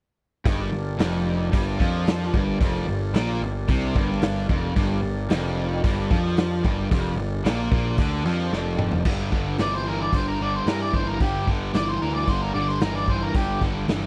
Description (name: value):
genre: blues rock power trio and southern rock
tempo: 112 BPM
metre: 4/4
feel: straight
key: G minor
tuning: A4 = 439 Hz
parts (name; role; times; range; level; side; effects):
- tonewheel organ; sustained chords; 0.5-9.0 s; D4 to Eb5; -38 LUFS; equal; slow rotary speaker
- cranked stack guitar; riff; 0.5-14.1 s; F2 to F3; -29 LUFS; equal; overdrive, spring reverb
- fuzz picked electric bass; bass; 0.5-14.1 s; F1 to G2; -30 LUFS; equal; overdrive
- raw garage drum kit; drums; 0.5-14.0 s; crash cymbal, hi-hat, kick drum, snare drum, toms; -27 LUFS; equal; none
- octave-fuzz lead guitar; melody; 9.6-13.6 s; G4 to D5; -30 LUFS; equal; distortion
room: little or no reverb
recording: dry, close 1970s-style studio recording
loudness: -24 LUFS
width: mono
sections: 0.5-9.1 A section; 9.1-14.1 B section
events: drum fill 8.5-9.1; lead electric guitar solo 9.1-14.1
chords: 0.5 Gm; 9.1 G5